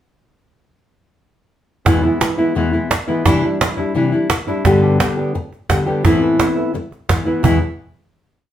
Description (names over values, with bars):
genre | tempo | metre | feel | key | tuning
flamenco | 172 BPM | 4/4 | straight | unclear | A4 = 440 Hz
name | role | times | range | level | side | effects
nylon-string guitar | accompaniment | 1.9-7.6 s | E2 to G4 | -16 LUFS | left 2 dB | none
flamenco guitar | stabs | 1.9-7.6 s | E2 to G4 | -21 LUFS | right 4 dB | none
cajon | percussion | 1.9-7.5 s | none | -17 LUFS | right 2 dB | none
room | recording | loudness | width
wet studio reverb, RT60 0.6 s | heard from further back in the room | -14 LUFS | side -11 dB against mid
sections
1.9-7.4 groove; 7.4-8.5 final chord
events
none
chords
1.9 E; 3.3 Cadd9; 4.7 G; 6.0 Amadd9; 6.7 E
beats
| 1.86 2.21 2.56 2.91 | 3.26 3.61 3.96 4.31 | 4.65 5.00 5.35 5.70 | 6.04 6.39 6.74 7.09 | 7.43